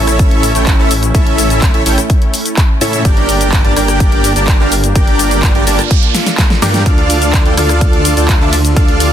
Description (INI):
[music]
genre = EDM, festival progressive house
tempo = 126 BPM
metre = 4/4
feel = straight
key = unclear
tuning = A4 = 440 Hz
[part]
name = lush unison pad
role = sustained chords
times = 0.0-9.1 s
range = D3 to A4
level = -20 LUFS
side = equal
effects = chorus, sidechain pumping
[part]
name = dense compressed supersaw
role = riff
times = 0.0-9.1 s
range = C#4 to A5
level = -15 LUFS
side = right 1 dB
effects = sidechain pumping, ping-pong delay
[part]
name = detuned saw bass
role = bass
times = 0.0-9.1 s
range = G1 to A2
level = -15 LUFS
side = equal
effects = sidechain pumping
[part]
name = big-room dance drum kit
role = drums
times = 0.1-9.1 s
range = handclaps, hi-hat, ride cymbal, rim click, shaker, snare drum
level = -17 LUFS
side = left 1 dB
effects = none
[part]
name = electronic kick drum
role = drums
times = 0.2-8.9 s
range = none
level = -11 LUFS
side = equal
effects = none
[part]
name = noise sweep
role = sound effects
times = 5.6-6.9 s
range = none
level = -22 LUFS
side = right 10 dB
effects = none
[sound]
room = little or no reverb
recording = dense, heavily limited modern master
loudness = -9 LUFS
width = side -10 dB against mid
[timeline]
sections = 0.0-9.1 A section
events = noise sweep 5.6-6.9; drum fill 6.1-6.9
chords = 0.0 A; 3.1 Gm; 6.9 Dm